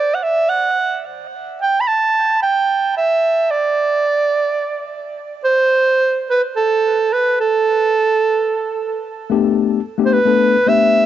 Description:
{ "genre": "progressive instrumental, progressive", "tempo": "free time", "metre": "none", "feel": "none", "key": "unclear", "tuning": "A4 = 441 Hz", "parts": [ { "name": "warm soprano saxophone", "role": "melody", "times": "0.0-11.1 s", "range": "A4 to B5", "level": "-15 LUFS", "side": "right 3 dB", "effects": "cassette tape, analog delay" }, { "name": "tine electric piano", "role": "accompaniment", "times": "9.3-11.1 s", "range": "A3 to A4", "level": "-15 LUFS", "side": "left 10 dB", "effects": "cassette tape" } ], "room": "light reverb, studio ambience", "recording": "home recording on cassette, nothing above 7.7 kHz", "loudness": "-14 LUFS", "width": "side -11 dB against mid", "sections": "0.0-9.3 A section; 9.3-11.1 B section", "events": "none", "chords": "0.0 N.C.; 9.3 Gadd9/A" }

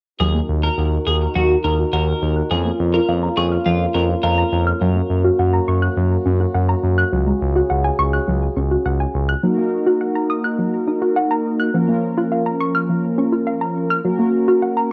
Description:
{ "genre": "pop", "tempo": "104 BPM", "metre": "4/4", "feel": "straight", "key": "Eb minor", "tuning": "A4 = 436 Hz", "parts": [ { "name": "twelve-string electric guitar", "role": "second line", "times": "0.2-4.6 s", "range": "F4 to Bb4", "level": "-25 LUFS", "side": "equal", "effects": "subtle chorus, tape echo, plate reverb" }, { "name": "warm French horn section", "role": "sustained chords", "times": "0.2-9.4 s", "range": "Db3 to Bb4", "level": "-26 LUFS", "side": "equal", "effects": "plate reverb" }, { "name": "soft round pluck", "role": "arpeggios", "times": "0.2-14.9 s", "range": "F3 to Gb6", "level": "-23 LUFS", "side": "equal", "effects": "chorus, low-pass filter, tape echo, plate reverb" }, { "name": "smooth synth bass", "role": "bass", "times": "0.2-9.3 s", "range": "Db2 to Gb2", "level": "-21 LUFS", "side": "equal", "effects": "none" }, { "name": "mellow synth brass", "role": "accompaniment", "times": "9.4-14.9 s", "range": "F3 to Bb4", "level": "-22 LUFS", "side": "equal", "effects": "chorus, plate reverb" } ], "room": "moderate studio reverb, RT60 0.5 s", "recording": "home recording on cassette", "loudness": "-19 LUFS", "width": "mono", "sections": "0.2-9.4 A section; 9.4-14.9 B section", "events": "filter sweep on synth pluck 0.2-9.4", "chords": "0.2 Ebm; 2.5 Bbm/F; 4.8 Gb; 7.1 Dbsus4; 9.4 Ebm; 11.7 Bbm/F; 14.0 Gb" }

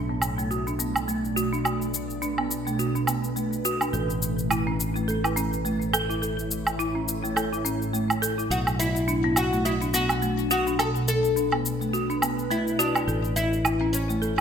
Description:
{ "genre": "organic downtempo", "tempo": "105 BPM", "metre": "4/4", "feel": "swing 57% on 16ths", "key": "B minor", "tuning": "A4 = 439 Hz", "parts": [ { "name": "ethereal airy pad", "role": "sustained chords", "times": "0.0-14.4 s", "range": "A2 to C#5", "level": "-31 LUFS", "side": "right 1 dB", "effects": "ensemble chorus, built-in reverb, phaser" }, { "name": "folk marimba with hard mallets", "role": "arpeggios", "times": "0.0-14.4 s", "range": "A3 to A4", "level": "-28 LUFS", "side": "equal", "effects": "low-pass filter, ping-pong delay" }, { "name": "fretless electric bass", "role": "bass", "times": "0.0-14.4 s", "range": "A1 to B1", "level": "-31 LUFS", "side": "equal", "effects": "none" }, { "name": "woodblock and cabasa", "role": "drums", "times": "0.2-14.4 s", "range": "none", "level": "-29 LUFS", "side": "equal", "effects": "small room ambience" }, { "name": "oud", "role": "melody", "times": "8.5-14.4 s", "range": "C#4 to A4", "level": "-26 LUFS", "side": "left 2 dB", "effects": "ping-pong delay" } ], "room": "moderate plate reverb, RT60 1.4 s, small room ambience", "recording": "bright 1980s-style digital production", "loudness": "-23 LUFS", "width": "side -7 dB against mid", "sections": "0.0-14.4 A section", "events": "filter sweep on marimba 0.0-14.4", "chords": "0.0 Bm7; 3.9 A; 8.5 Bm7; 13.1 A" }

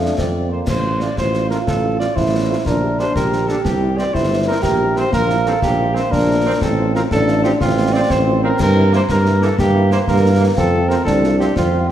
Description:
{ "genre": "military-style march for wind band", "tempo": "121 BPM (dotted quarters)", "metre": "6/8", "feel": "straight", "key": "F major", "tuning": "A4 = 439 Hz", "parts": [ { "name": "dark cornet", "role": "melody", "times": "0.0-11.9 s", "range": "F4 to E5", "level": "-21 LUFS", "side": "left 1 dB", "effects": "none" }, { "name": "clear euphonium", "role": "second line", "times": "0.0-11.9 s", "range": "Bb3 to G4", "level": "-20 LUFS", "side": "right 2 dB", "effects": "none" }, { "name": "mellow French horn section", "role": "accompaniment", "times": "0.0-11.9 s", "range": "F3 to F5", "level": "-30 LUFS", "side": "left 4 dB", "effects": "none" }, { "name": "bright trombone section", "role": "sustained chords", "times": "0.0-11.5 s", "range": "E3 to F4", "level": "-29 LUFS", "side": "right 3 dB", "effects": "none" }, { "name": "mellow tuba", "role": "bass", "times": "0.0-11.9 s", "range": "G1 to G2", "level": "-18 LUFS", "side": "right 1 dB", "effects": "none" }, { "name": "concert snare drum, concert bass drum and clash cymbals", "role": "drums", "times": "0.2-11.7 s", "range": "none", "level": "-24 LUFS", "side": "left 2 dB", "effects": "none" } ], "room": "wet scoring stage reverb, RT60 1.6 s", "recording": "none", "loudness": "-14 LUFS", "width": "side -11 dB against mid", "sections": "0.7-11.9 A section", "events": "none", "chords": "0.0 F; 0.7 F/A; 2.7 Gm/Bb; 3.6 C; 4.6 C7/Bb; 6.6 F/A; 8.6 Edim/G; 10.6 F" }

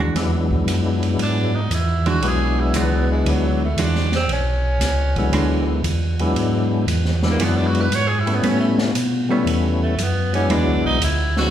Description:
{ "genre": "soul jazz organ trio", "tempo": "116 BPM", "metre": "4/4", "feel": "swing 68% on 8ths", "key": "E mixolydian", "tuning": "A4 = 441 Hz", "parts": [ { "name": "hollow-body jazz guitar", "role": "accompaniment", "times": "0.0-10.8 s", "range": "E3 to F#4", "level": "-25 LUFS", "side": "right 2 dB", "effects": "none" }, { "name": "mellow tonewheel organ", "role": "bass", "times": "0.0-11.5 s", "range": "B1 to B2", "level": "-20 LUFS", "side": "equal", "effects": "chorus vibrato, slow rotary speaker" }, { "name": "percussive tonewheel organ", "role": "melody", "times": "0.2-11.5 s", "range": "D3 to E4", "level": "-22 LUFS", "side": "left 3 dB", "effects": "slow rotary speaker, overdrive, chorus vibrato" }, { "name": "open jazz drum kit", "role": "drums", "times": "0.2-11.4 s", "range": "hi-hat, kick drum, ride cymbal, snare drum", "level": "-27 LUFS", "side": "right 1 dB", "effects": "none" }, { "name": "growling tenor saxophone", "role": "melody", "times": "1.2-11.5 s", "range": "F#3 to C#5", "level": "-24 LUFS", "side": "right 2 dB", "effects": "none" } ], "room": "wet recital hall reverb, RT60 1.4 s", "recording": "recorded in a church or concert hall", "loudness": "-17 LUFS", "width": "side -10 dB against mid", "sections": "0.2-11.5 A section", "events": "tenor saxophone solo 0.2-11.5", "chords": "0.2 E9; 8.4 A9; 10.5 E9" }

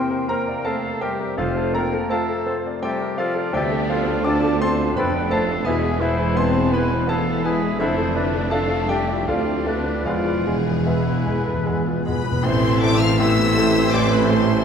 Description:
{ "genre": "classical, romantic movement for piano and orchestra", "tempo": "74-86 BPM", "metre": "3/4", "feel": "rubato", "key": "F major, A minor from 3.5 s", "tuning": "A4 = 440 Hz", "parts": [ { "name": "clear baby grand piano", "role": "melody", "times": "0.0-14.6 s", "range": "A1 to D6", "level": "-24 LUFS", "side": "left 2 dB", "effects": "none" }, { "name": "rich chamber violin section", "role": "melody", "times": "0.0-14.6 s", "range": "D4 to F6", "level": "-31 LUFS", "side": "left 4 dB", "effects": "none" }, { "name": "silver concert flute", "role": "second line", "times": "0.0-14.6 s", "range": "B4 to A5", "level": "-30 LUFS", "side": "left 2 dB", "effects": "none" }, { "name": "warm clarinet", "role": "second line", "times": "0.0-14.6 s", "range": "B3 to Bb4", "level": "-31 LUFS", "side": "left 3 dB", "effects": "none" }, { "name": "warm cor anglais", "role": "second line", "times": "0.0-14.6 s", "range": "D4 to D5", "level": "-30 LUFS", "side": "right 2 dB", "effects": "none" }, { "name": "warm symphonic violin section", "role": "second line", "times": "0.0-14.6 s", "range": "A3 to E5", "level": "-33 LUFS", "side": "left 3 dB", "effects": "none" }, { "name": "mellow bassoon", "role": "accompaniment", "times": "0.0-14.6 s", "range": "E3 to C4", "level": "-29 LUFS", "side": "right 2 dB", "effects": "none" }, { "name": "rich symphonic viola section", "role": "accompaniment", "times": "0.0-14.6 s", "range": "G#3 to A4", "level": "-30 LUFS", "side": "equal", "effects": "none" }, { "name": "dark trombone section", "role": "sustained chords", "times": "0.0-14.6 s", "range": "B2 to B3", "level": "-30 LUFS", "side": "right 3 dB", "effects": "none" }, { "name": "mellow French horn section", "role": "sustained chords", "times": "0.0-14.6 s", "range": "D3 to E4", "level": "-28 LUFS", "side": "left 3 dB", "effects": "none" }, { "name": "mellow tuba", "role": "bass", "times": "1.4-14.6 s", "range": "E1 to D2", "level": "-28 LUFS", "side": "right 4 dB", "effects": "none" }, { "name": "rich symphonic cello section", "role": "bass", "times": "1.4-14.6 s", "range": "D2 to A2", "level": "-29 LUFS", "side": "right 3 dB", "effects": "none" }, { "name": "rich symphonic double bass section", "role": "bass", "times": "1.4-14.6 s", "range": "E1 to D2", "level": "-27 LUFS", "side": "right 2 dB", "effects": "none" }, { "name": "timpani", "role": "percussion", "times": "10.1-12.4 s", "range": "E2", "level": "-26 LUFS", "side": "equal", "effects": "none" }, { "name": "dark trumpet section", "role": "stabs", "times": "12.5-14.6 s", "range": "E5", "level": "-32 LUFS", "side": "right 3 dB", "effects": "none" } ], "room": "wet scoring stage reverb, RT60 1.8 s", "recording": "none", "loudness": "-18 LUFS", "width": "side -7 dB against mid", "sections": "0.0-12.5 A section; 12.5-14.6 B section", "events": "timpani fill 10.1-12.5", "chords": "0.0 C7/E; 1.4 F; 3.5 Dm7; 5.7 E; 7.8 Dm/F; 10.1 E; 12.5 Am" }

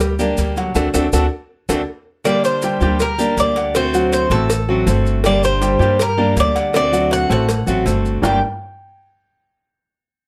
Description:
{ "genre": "latin, Cuban son and guajira", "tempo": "160 BPM", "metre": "4/4", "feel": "straight", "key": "G harmonic minor", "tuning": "A4 = 440 Hz", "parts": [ { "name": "fingerpicked steel-string acoustic guitar", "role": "accompaniment", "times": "0.0-8.4 s", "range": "G2 to G4", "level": "-24 LUFS", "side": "equal", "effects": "none" }, { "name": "dark concert grand piano", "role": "arpeggios", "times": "0.0-8.4 s", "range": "F#3 to G5", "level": "-23 LUFS", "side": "equal", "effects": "none" }, { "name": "upright bass", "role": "bass", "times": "0.0-8.4 s", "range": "G1 to G2", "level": "-22 LUFS", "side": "equal", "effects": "none" }, { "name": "cowbell and bongos", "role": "percussion", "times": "0.0-8.3 s", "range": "none", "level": "-27 LUFS", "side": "equal", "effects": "none" }, { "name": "maracas", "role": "percussion", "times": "0.0-8.3 s", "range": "none", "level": "-34 LUFS", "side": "equal", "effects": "none" }, { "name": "Cuban tres", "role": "melody", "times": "2.3-8.4 s", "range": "A4 to G5", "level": "-21 LUFS", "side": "equal", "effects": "none" } ], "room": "little or no reverb", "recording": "close, detailed microphones", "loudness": "-17 LUFS", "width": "mono", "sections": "0.0-2.3 A section; 2.3-8.2 B section; 8.2-9.7 C section", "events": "band accent 0.8-2.3", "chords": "0.0 Gm; 0.8 D7; 2.3 Gm; 3.7 D7; 5.2 Gm; 6.7 D7; 8.2 Gm" }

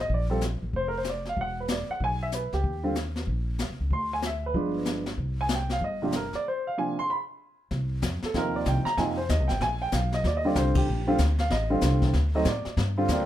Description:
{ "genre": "jazz piano trio", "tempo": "189 BPM", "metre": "4/4", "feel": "swing 63% on 8ths", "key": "C minor", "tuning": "A4 = 440 Hz", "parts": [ { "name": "warm upright piano", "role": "melody", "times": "0.0-13.3 s", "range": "C3 to C6", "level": "-27 LUFS", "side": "right 1 dB", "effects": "plate reverb" }, { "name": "upright bass", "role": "bass", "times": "0.0-13.3 s", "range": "E1 to A2", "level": "-28 LUFS", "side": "equal", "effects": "none" }, { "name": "jazz brush drum kit", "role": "drums", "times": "0.1-13.3 s", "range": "brushed snare drum, hi-hat, kick drum, ride cymbal, snare drum", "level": "-32 LUFS", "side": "left 2 dB", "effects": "none" } ], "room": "light reverb", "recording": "none", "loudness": "-25 LUFS", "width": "side -12 dB against mid", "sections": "0.0-7.7 A section; 7.7-13.3 B section", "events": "break 6.4-7.7; band accent 10.7", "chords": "0.1 Bbsus2; 1.4 E5; 2.6 Eb; 3.9 E7(#5, no3)/D; 4.5 G7b9; 5.2 C5; 6.4 Bb9/C; 7.1 N.C.; 7.7 Cm7; 9.0 Fm7; 9.6 Abm69/Bb; 10.2 Ebmaj7; 11.5 Am7b5; 12.1 D5" }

